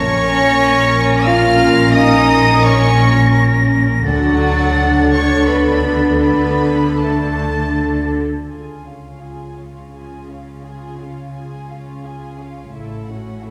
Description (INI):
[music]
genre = cinematic, emotional film score for orchestra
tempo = 85 BPM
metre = 3/4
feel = rubato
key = unclear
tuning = A4 = 440 Hz
[part]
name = dark studio violin section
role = melody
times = 0.0-13.5 s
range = E5 to F6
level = -26 LUFS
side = equal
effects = none
[part]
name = dark clarinet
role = second line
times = 0.0-8.1 s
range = Db4 to D4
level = -24 LUFS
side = equal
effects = none
[part]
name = rich studio violin section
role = second line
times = 0.0-13.5 s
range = F4 to F5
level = -26 LUFS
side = equal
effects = none
[part]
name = silver concert flute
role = second line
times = 0.0-8.1 s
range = A6 to Bb6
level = -22 LUFS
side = equal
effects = none
[part]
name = warm studio viola section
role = accompaniment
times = 0.0-13.5 s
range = Db4 to Bb4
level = -24 LUFS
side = equal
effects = none
[part]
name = warm French horn section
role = sustained chords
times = 0.0-8.1 s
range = F#3 to Db5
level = -21 LUFS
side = equal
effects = none
[part]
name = dark studio double bass section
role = bass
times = 0.0-13.5 s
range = A1 to D2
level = -22 LUFS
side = equal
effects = none
[part]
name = warm studio cello section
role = bass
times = 0.0-13.5 s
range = A2 to D3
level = -24 LUFS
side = equal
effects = none
[sound]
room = wet concert hall reverb, RT60 1.8 s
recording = heard from further back in the room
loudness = -14 LUFS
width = mono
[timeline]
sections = 0.0-8.5 A section; 8.5-13.5 B section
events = none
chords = 0.0 Bbm; 4.1 D; 8.5 Db; 12.7 A6